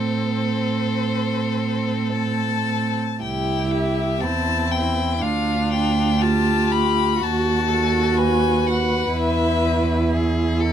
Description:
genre	classical, slow romantic movement for string quartet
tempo	50-62 BPM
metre	4/4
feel	rubato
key	A minor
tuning	A4 = 440 Hz
part	clear violin	melody	0.0-10.1 s	C5 to B5	-24 LUFS	left 8 dB	none
part	rich violin	second line	0.0-10.7 s	E4 to B4	-27 LUFS	left 3 dB	none
part	rich viola	accompaniment	0.0-10.7 s	C4 to F#4	-25 LUFS	right 3 dB	none
part	warm cello	bass	0.0-10.7 s	C2 to A2	-22 LUFS	right 3 dB	none
room	little or no reverb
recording	close, detailed microphones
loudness	-18 LUFS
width	side -9 dB against mid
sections	0.0-3.2 A section; 3.2-10.7 B section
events	none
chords	0.0 Am; 3.2 C; 5.2 Dm; 7.2 B7/D#; 9.2 E

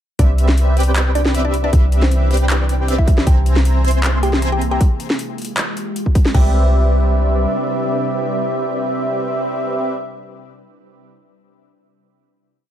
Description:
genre	future bass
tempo	156 BPM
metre	4/4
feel	half-time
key	C major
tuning	A4 = 440 Hz
part	mallet-like synth pluck	melody	0.2-9.9 s	C4 to G5	-25 LUFS	equal	chorus, phaser, sidechain pumping, tape echo
part	ethereal airy pad	sustained chords	0.6-9.9 s	C3 to B4	-28 LUFS	right 1 dB	ensemble chorus, built-in reverb, sidechain pumping
part	airy dreamy lead	arpeggios	0.2-9.9 s	E5 to C6	-26 LUFS	equal	chorus, sidechain pumping
part	supersaw stab	riff	0.2-9.9 s	C4 to C6	-22 LUFS	equal	sidechain pumping, ping-pong delay
part	warm 808-style bass	bass	0.2-7.5 s	C2	-15 LUFS	equal	sidechain pumping
part	electronic kick drum	drums	0.2-6.4 s	none	-14 LUFS	equal	overdrive, small room ambience
part	trap drum kit	drums	0.2-6.4 s	crash cymbal, handclaps, hi-hat, snare drum	-22 LUFS	equal	overdrive, small room ambience
room	little or no reverb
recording	none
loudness	-14 LUFS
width	side -11 dB against mid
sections	0.2-6.3 drop; 6.3-9.4 final chord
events	drop 0.2-6.3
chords	0.2 Cmaj9; 3.3 C7b13; 4.8 Fmadd9; 6.3 Cmaj9

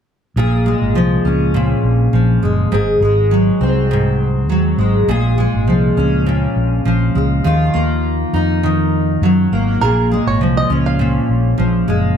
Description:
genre	pop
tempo	102 BPM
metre	4/4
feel	swing 55% on 16ths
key	Bb minor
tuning	A4 = 439 Hz
part	fingerpicked steel-string acoustic guitar	accompaniment	0.4-12.2 s	Ab2 to Ab4	-15 LUFS	equal	double-tracked left and right
part	mellow fretless electric bass	bass	0.4-12.1 s	Gb1 to Gb2	-17 LUFS	equal	none
part	bluegrass banjo	arpeggios	9.8-11.3 s	Bb4 to F5	-20 LUFS	right 5 dB	plate reverb
room	moderate studio reverb, RT60 0.8 s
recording	none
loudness	-13 LUFS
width	side -8 dB against mid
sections	0.4-12.2 A section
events	none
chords	0.4 Bbm7; 2.7 Ab7; 5.1 Bbm7; 7.4 Ebmadd9; 9.8 Bbm7

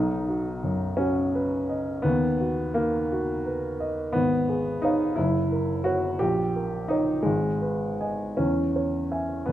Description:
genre	classical, romantic character piece for solo piano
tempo	57 BPM (dotted quarters)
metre	6/8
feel	rubato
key	B major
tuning	A4 = 440 Hz
part	warm upright piano	solo	0.0-9.5 s	F#1 to G#5	-23 LUFS	equal	none
room	moderate recital hall reverb, RT60 1.5 s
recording	dark, warm production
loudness	-23 LUFS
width	side -12 dB against mid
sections	0.0-9.5 A section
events	none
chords	0.0 B; 2.0 B/D#; 4.1 C#7/G#; 5.2 F#; 6.2 D#7/A#; 7.3 G#m; 8.4 C#m/E

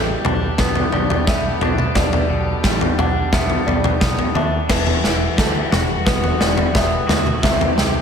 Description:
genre	post-rock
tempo	88 BPM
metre	4/4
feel	straight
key	unclear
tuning	A4 = 440 Hz
part	rich chamber string section	sustained chords	0.0-8.0 s	D3 to G4	-29 LUFS	left 1 dB	none
part	felt-muted upright piano	arpeggios	0.0-8.0 s	A4 to F#5	-26 LUFS	right 1 dB	slapback echo
part	twangy electric guitar	arpeggios	0.0-8.0 s	B2 to F#4	-24 LUFS	left 2 dB	slapback echo
part	growling fingered electric bass	bass	0.0-8.0 s	E1 to Eb2	-25 LUFS	equal	overdrive
part	big rock drum kit	drums	0.2-7.9 s	crash cymbal, kick drum, snare drum, toms	-17 LUFS	equal	none
room	wet concert hall reverb, RT60 2.1 s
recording	big arena sound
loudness	-15 LUFS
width	side -7 dB against mid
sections	0.0-8.0 A section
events	build-up 0.0-8.0; drum fill 0.0-8.0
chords	0.0 G; 4.7 Emadd9; 7.4 C

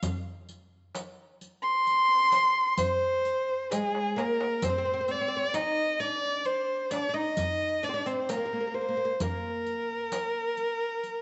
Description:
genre	Turkish makam ensemble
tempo	131 BPM (eighths)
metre	10/8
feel	straight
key	unclear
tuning	A4 = 440 Hz
part	dark violin	melody	0.0-11.2 s	Ab4 to C6	-29 LUFS	equal	none
part	darbuka	percussion	0.0-10.3 s	none	-40 LUFS	equal	none
part	riq	percussion	0.0-11.2 s	none	-40 LUFS	equal	none
part	oud	second line	3.7-11.2 s	Ab3 to Eb4	-37 LUFS	equal	none
room	moderate echo chamber reverb, RT60 1.7 s, small room ambience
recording	nothing above 8.0 kHz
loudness	-28 LUFS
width	mono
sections	0.0-4.6 A section; 4.6-11.2 B section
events	drum fill 3.7-4.6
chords	none

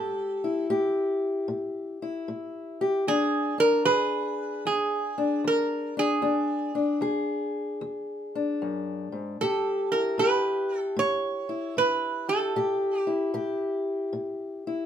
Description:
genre	acoustic country blues, solo or duo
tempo	76 BPM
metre	4/4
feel	swing 66% on 8ths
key	unclear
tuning	A4 = 440 Hz
part	metal-body resonator slide guitar	melody	0.0-13.3 s	G#4 to C#5	-26 LUFS	right 3 dB	none
part	fingerpicked steel-string acoustic guitar	accompaniment	0.0-14.9 s	E2 to G#4	-27 LUFS	left 2 dB	none
room	wet small room reverb, RT60 0.5 s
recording	minimal, uncompressed stereo recording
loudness	-25 LUFS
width	side -9 dB against mid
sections	0.0-14.9 A section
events	none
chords	0.0 A5; 3.1 E7; 9.4 A7(no3)

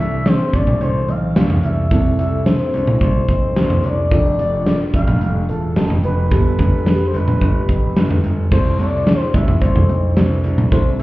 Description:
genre	synth-pop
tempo	109 BPM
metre	4/4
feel	straight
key	C major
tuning	A4 = 440 Hz
part	expressive synth lead	melody	0.0-11.0 s	A4 to F5	-23 LUFS	left 2 dB	chorus, digital delay
part	FM electric piano with soft pad layer	accompaniment	0.0-11.0 s	E3 to A4	-25 LUFS	equal	chorus, phaser
part	warm concert grand piano	bass	0.0-11.0 s	E1 to C2	-20 LUFS	equal	none
part	huge arena drum kit	drums	0.3-11.0 s	crash cymbal, hi-hat, kick drum, snare drum, toms	-16 LUFS	equal	none
room	light reverb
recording	heard muffled through a wall, club reverb, EQ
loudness	-14 LUFS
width	side -18 dB against mid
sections	0.0-8.5 A section; 8.5-11.0 B section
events	none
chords	0.0 C6; 4.1 F6; 6.3 Gadd9; 8.5 C6

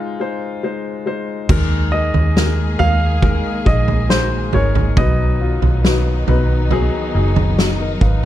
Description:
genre	pop ballad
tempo	69 BPM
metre	4/4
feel	straight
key	unclear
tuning	A4 = 440 Hz
part	warm grand piano	melody	0.0-6.2 s	C5 to F5	-22 LUFS	right 1 dB	none
part	warm baby grand piano	accompaniment	0.0-8.3 s	Ab1 to F5	-22 LUFS	left 4 dB	none
part	warm studio string section	sustained chords	1.5-8.3 s	Eb3 to Ab4	-26 LUFS	left 1 dB	none
part	vintage muted fingered electric bass	bass	1.5-8.3 s	Gb1 to Eb2	-17 LUFS	equal	none
part	loose indie drum kit	drums	1.5-8.2 s	crash cymbal, kick drum, snare drum, toms	-18 LUFS	right 1 dB	none
room	small room ambience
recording	dark, warm production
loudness	-14 LUFS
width	side -12 dB against mid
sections	0.0-1.5 A section; 1.5-8.3 B section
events	none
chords	0.0 Ab; 1.5 Ebsus4; 5.0 Cb

